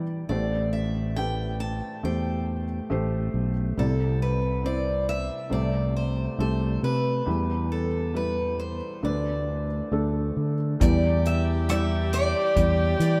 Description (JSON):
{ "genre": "acoustic folk-pop ballad", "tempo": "69 BPM", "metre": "4/4", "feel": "straight", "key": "E minor", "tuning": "A4 = 439 Hz", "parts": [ { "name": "felt-muted upright piano", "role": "accompaniment", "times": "0.0-13.2 s", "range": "A1 to D5", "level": "-32 LUFS", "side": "equal", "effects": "none" }, { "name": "fingered electric bass", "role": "bass", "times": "0.0-13.2 s", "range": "A1 to E3", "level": "-28 LUFS", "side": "equal", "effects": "none" }, { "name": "picked steel-string acoustic guitar", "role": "melody", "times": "0.3-13.2 s", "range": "A4 to A5", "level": "-32 LUFS", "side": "equal", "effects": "none" }, { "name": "clear viola", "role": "second line", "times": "10.8-13.2 s", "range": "G4", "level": "-33 LUFS", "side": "equal", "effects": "none" }, { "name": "natural country drum kit", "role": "drums", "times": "10.8-13.2 s", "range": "hi-hat, kick drum, rim click", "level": "-29 LUFS", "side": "equal", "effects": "none" } ], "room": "moderate cathedral reverb, RT60 5.8 s", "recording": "in a vast, echoing space", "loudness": "-26 LUFS", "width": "mono", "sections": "0.0-10.8 A section; 10.8-13.2 B section", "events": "none", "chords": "0.3 Am7; 3.8 Cadd9; 5.5 Am7/C; 7.3 Em; 9.0 Bm7/D; 10.8 Em7", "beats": "| 0.30 1.17 2.04 2.91 | 3.78 4.64 5.52 6.39 | 7.27 8.15 9.04 9.93 | 10.81 11.69 12.56" }